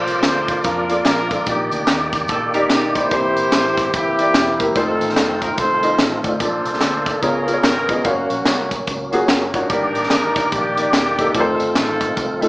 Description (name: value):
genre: uptempo gospel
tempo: 146 BPM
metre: 4/4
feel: swing 61% on 8ths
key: Bb major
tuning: A4 = 440 Hz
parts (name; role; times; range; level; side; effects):
- mellow horn section; melody; 0.0-12.5 s; Bb3 to C5; -20 LUFS; equal; none
- warm upright piano; accompaniment; 0.0-12.5 s; G2 to F5; -22 LUFS; equal; none
- tonewheel organ; sustained chords; 0.0-12.5 s; Eb3 to D5; -23 LUFS; equal; fast rotary speaker, chorus vibrato
- vintage muted fingered electric bass; bass; 0.0-12.5 s; E1 to Bb2; -34 LUFS; equal; none
- crisp fusion drum kit; drums; 0.1-12.5 s; hi-hat, kick drum, snare drum; -21 LUFS; equal; none
- tambourine and handclaps; percussion; 0.1-12.5 s; none; -28 LUFS; equal; none
- clean electric guitar; second line; 2.3-3.1 s; Eb4 to Bb4; -24 LUFS; right 1 dB; none
room: wet large studio reverb, RT60 0.8 s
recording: band playing live in one room, small speaker sound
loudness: -15 LUFS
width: side -22 dB against mid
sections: 0.0-12.5 A section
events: none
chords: 0.0 Bbmaj7; 1.5 Ebmaj7/Bb; 3.1 C7; 4.8 F7; 6.4 Bbmaj7; 7.2 Db7; 8.0 Gbmaj7; 9.7 Ebmaj7/G; 11.3 F7